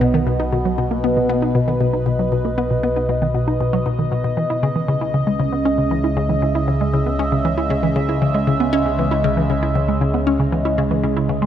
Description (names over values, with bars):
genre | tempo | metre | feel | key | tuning
ambient, sequencer-driven space music | 117 BPM | 4/4 | straight | unclear | A4 = 441 Hz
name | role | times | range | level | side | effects
sweeping resonant pad | sustained chords | 0.0-11.5 s | B2 to E5 | -19 LUFS | right 1 dB | chorus, phaser
hollow square pluck | riff | 0.0-11.5 s | B2 to E4 | -20 LUFS | left 1 dB | chorus, phaser, tape echo
fat analog bass | bass | 0.0-11.5 s | B1 to C#2 | -25 LUFS | equal | tube saturation
room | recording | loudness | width
moderate lush hall reverb, RT60 2.9 s | none | -16 LUFS | side -10 dB against mid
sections
0.0-11.5 A section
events
none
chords
0.0 B; 4.4 C#madd9